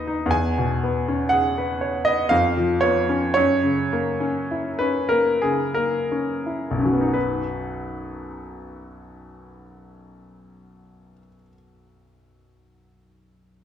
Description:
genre	classical, romantic nocturne for solo piano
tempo	42-60 BPM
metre	3/4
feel	rubato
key	B major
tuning	A4 = 440 Hz
part	clear baby grand piano	solo	0.0-13.6 s	B1 to G#5	-20 LUFS	equal	none
room	wet recital hall reverb, RT60 1.4 s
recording	dark, warm production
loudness	-20 LUFS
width	side -9 dB against mid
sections	0.0-7.1 A section; 7.1-11.4 B section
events	slowing down 0.0-7.1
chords	0.3 C#m7/E; 2.3 C#7/E#; 3.4 F#7; 7.1 B

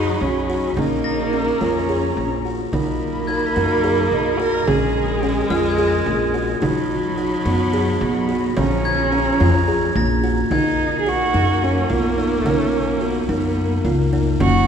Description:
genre	contemporary instrumental, chamber music in an uneven meter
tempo	216 BPM (eighths)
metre	7/8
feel	straight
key	unclear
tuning	A4 = 437 Hz
part	dark cello	melody	0.0-14.7 s	B3 to Bb4	-23 LUFS	right 2 dB	none
part	dark viola	second line	0.0-14.7 s	F3 to Bb3	-24 LUFS	right 2 dB	none
part	warm woodwind section	sustained chords	0.0-10.5 s	F#4 to B5	-29 LUFS	left 1 dB	none
part	buzzing kalimba	arpeggios	0.0-14.7 s	Db4 to Ab4	-23 LUFS	left 1 dB	none
part	upright bass	bass	0.0-14.7 s	Gb1 to F#2	-22 LUFS	left 1 dB	none
part	frame drum	percussion	0.2-14.7 s	none	-30 LUFS	right 3 dB	none
part	glockenspiel with soft plastic mallets	texture	1.0-12.4 s	F6 to B6	-27 LUFS	equal	none
room	wet church reverb, RT60 3.6 s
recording	recorded in a church or concert hall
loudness	-17 LUFS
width	side -7 dB against mid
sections	0.0-10.5 A section; 10.5-14.7 B section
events	none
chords	0.0 B; 0.8 Bbm7; 2.7 B; 4.7 Bbm7; 6.6 B; 8.6 Bbm7; 10.5 Bmaj7

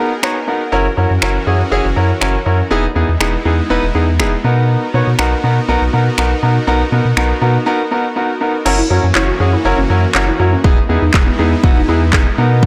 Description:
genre	dance-pop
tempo	121 BPM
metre	4/4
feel	straight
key	B major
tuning	A4 = 435 Hz
part	bright concert grand piano	accompaniment	0.0-12.7 s	B3 to A#5	-19 LUFS	equal	sidechain pumping
part	supersaw pad	sustained chords	0.0-12.7 s	E3 to A#4	-25 LUFS	equal	sidechain pumping
part	house drum kit	drums	0.2-12.7 s	crash cymbal, finger snaps, handclaps, kick drum	-18 LUFS	equal	soft clipping on snare
part	saturated sub bass	bass	0.7-12.7 s	E1 to B2	-17 LUFS	equal	sidechain pumping
part	hollow square pluck	arpeggios	8.7-12.7 s	B3 to F#4	-23 LUFS	equal	chorus, sidechain pumping, dub echo
room	light reverb, digital ambience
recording	blown-out, overdriven recording, overdrive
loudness	-14 LUFS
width	mono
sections	0.0-8.7 A section; 8.7-12.7 B section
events	grand piano fill 0.0-0.7; break 7.7-8.7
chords	0.0 Bmaj7; 0.7 F#7; 2.7 Emaj7; 4.4 Bmaj7; 8.7 F#7; 10.6 Emaj7

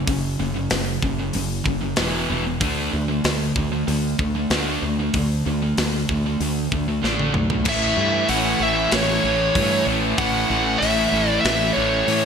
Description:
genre	heavy metal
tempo	95 BPM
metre	4/4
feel	straight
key	unclear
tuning	A4 = 440 Hz
part	distorted electric guitar	riff	0.0-12.2 s	E2 to D4	-26 LUFS	left 12 dB	distortion
part	sludgy distorted guitar	riff	0.0-12.2 s	E2 to D4	-25 LUFS	right 10 dB	overdrive
part	woody fretless electric bass	bass	0.0-12.2 s	E1 to A2	-26 LUFS	equal	none
part	tight metal drum kit	drums	0.1-12.2 s	crash cymbal, hi-hat, kick drum, snare drum, toms	-26 LUFS	left 1 dB	gated reverb
part	distorted electric guitar	riff	7.6-12.2 s	A2 to E4	-26 LUFS	equal	overdrive
part	high-gain lead guitar	melody	7.7-12.2 s	C#5 to F#5	-21 LUFS	equal	distortion
room	moderate lush hall reverb, RT60 2.7 s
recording	bright 1980s-style digital production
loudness	-18 LUFS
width	side -6 dB against mid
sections	0.0-7.7 A section; 7.7-12.2 B section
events	drum fill 7.0-7.7; half time 7.7-12.2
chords	0.0 F#5; 2.0 E5; 2.6 D5; 7.7 A

